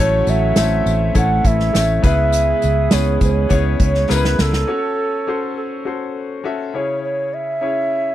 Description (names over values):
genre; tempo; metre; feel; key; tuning
piano-driven pop; 102 BPM; 4/4; straight; C# minor; A4 = 440 Hz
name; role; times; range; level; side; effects
mellow bansuri; melody; 0.0-8.1 s; A4 to F#5; -20 LUFS; right 2 dB; slapback echo
mellow French horn section; second line; 0.0-4.3 s; E3 to G#4; -26 LUFS; right 15 dB; none
clear upright piano; accompaniment; 0.0-8.1 s; A2 to E5; -22 LUFS; left 6 dB; none
vintage muted fingered electric bass; bass; 0.0-4.6 s; A1 to C#2; -18 LUFS; equal; none
unplugged drum kit; drums; 0.3-4.7 s; hi-hat, kick drum, snare drum; -17 LUFS; equal; none
tambourine; percussion; 0.3-4.5 s; none; -32 LUFS; left 23 dB; none
room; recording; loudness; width
little or no reverb; dry, close 1970s-style studio recording; -15 LUFS; side -13 dB against mid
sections
0.0-4.7 A section; 4.7-8.1 B section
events
drum fill 4.1-4.7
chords
0.0 A; 2.0 C#m7; 4.7 F#m; 6.7 C#m